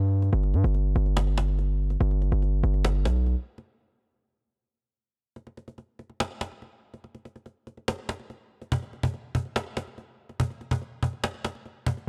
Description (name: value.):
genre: hip hop, trap.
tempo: 143 BPM.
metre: 4/4.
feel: half-time.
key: unclear.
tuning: A4 = 439 Hz.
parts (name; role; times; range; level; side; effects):
hard-hitting 808-style bass; bass; 0.0-3.4 s; G1 to G2; -25 LUFS; equal; none.
cajon; drums; 0.2-12.0 s; none; -32 LUFS; equal; none.
room: little or no reverb.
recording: dry, gritty hardware recording, transformer saturation, cassette tape.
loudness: -28 LUFS.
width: mono.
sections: 0.0-5.4 A section; 5.4-12.1 B section.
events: break 3.7-5.4.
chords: none.